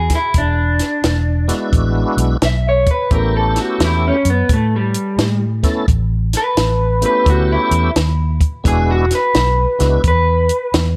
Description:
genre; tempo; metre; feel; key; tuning
electric blues shuffle; 87 BPM; 4/4; swing 65% on 8ths; unclear; A4 = 440 Hz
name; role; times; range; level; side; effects
electric guitar through a small old amp; melody; 0.0-10.7 s; G3 to E5; -20 LUFS; equal; spring reverb
vintage muted fingered electric bass; bass; 0.0-11.0 s; E1 to A2; -19 LUFS; equal; none
compact cocktail drum kit; drums; 0.1-10.9 s; hi-hat, kick drum, snare drum; -20 LUFS; equal; none
tonewheel organ; accompaniment; 1.5-10.0 s; G#3 to A4; -22 LUFS; equal; slow rotary speaker, overdrive, chorus vibrato
room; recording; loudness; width
light reverb; none; -16 LUFS; mono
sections
0.0-11.0 A section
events
clean electric guitar solo 0.0-11.0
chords
0.0 E7; 3.1 A7; 8.7 E7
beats
| 0.35 1.05 1.74 2.43 | 3.12 3.81 4.50 5.19 | 5.89 6.58 7.27 7.96 | 8.66 9.35 10.05 10.74

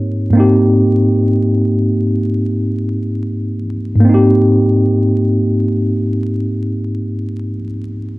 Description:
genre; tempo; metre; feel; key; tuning
hip hop; free time; none; none; Ab major; A4 = 438 Hz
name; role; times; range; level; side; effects
mellow tine electric piano; solo; 0.0-8.2 s; Ab2 to G4; -12 LUFS; equal; medium stereo tremolo, low-pass filter
room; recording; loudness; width
wet small room ambience, RT60 0.5 s; vinyl crackle; -12 LUFS; side -19 dB against mid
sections
0.0-4.0 A section; 4.0-7.3 B section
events
none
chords
0.0 Abmaj9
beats
free time

